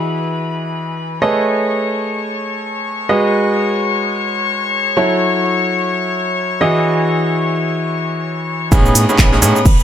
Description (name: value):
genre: piano house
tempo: free time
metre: none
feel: none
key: unclear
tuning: A4 = 435 Hz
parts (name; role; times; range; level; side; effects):
- warm chamber violin section; sustained chords; 0.0-9.8 s; B4 to C#6; -20 LUFS; left 5 dB; vintage 12-bit sampler grit, sidechain pumping
- clear baby grand piano; riff; 0.0-9.6 s; A2 to D#5; -16 LUFS; right 1 dB; sidechain pumping, tape echo
- organ-like FM bass; bass; 8.7-9.8 s; A1 to A2; -17 LUFS; equal; sidechain pumping
- electronic kick drum; drums; 8.7-9.8 s; none; -11 LUFS; equal; none
- house drum kit; drums; 8.7-9.8 s; handclaps, hi-hat, shaker; -18 LUFS; right 1 dB; none
- soft brush drum kit; drums; 8.7-9.8 s; hi-hat, ride cymbal, snare drum; -25 LUFS; left 1 dB; high-pass filter on cymbals, high-pass filter on hats, high-pass filter on snare, high-pass filter on room
room: light reverb, small room ambience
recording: none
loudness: -14 LUFS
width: side -10 dB against mid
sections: 0.0-8.7 A section; 8.7-9.8 B section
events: drop 8.7-9.8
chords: 0.0 Emaj9; 1.2 Amaj9#11; 3.1 G#m7; 5.0 F#m7; 6.6 Emaj9; 8.7 Amaj9#11